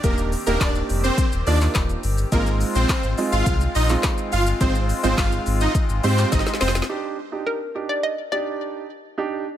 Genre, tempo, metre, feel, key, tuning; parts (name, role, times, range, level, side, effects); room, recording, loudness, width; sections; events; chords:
dance-pop; 105 BPM; 4/4; straight; Eb major; A4 = 440 Hz
supersaw chords; melody; 0.0-6.7 s; Bb3 to F5; -25 LUFS; equal; sidechain pumping, ping-pong delay
warm grand piano; accompaniment; 0.0-9.4 s; Ab3 to G4; -27 LUFS; right 5 dB; sidechain pumping
accordion; sustained chords; 0.0-6.9 s; Eb3 to G4; -30 LUFS; left 2 dB; light tremolo tuning, sidechain pumping
sub bass with octave; bass; 0.0-6.8 s; D1 to Ab2; -22 LUFS; left 1 dB; sidechain pumping
deep house drum kit; drums; 0.0-7.0 s; handclaps, hi-hat, kick drum, shaker, snare drum; -24 LUFS; left 1 dB
hollow square pluck; melody; 7.5-8.9 s; Bb4 to Eb5; -26 LUFS; left 1 dB; chorus, ping-pong delay
digital ambience; -19 LUFS; side -11 dB against mid
0.0-6.9 A section; 6.9-9.6 B section
drop 0.0-6.9; drum fill 6.3-6.9
0.0 Ebmaj7; 2.3 Ab6; 6.9 Ebmaj7